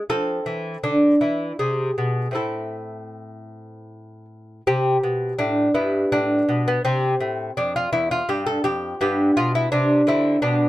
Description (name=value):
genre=classical, baroque-style dance for lute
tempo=51-57 BPM (dotted quarters)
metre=6/8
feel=rubato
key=A minor, C major from 4.7 s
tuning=A4 = 439 Hz
part: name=lute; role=solo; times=0.0-10.7 s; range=E2 to A4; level=-19 LUFS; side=equal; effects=none
room=light reverb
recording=dark, warm production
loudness=-19 LUFS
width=side -15 dB against mid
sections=0.0-4.7 A section; 4.7-10.7 A section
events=none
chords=0.1 F; 1.2 E; 2.4 Am; 4.7 C5; 5.8 G; 6.8 C; 9.0 G; 10.1 D5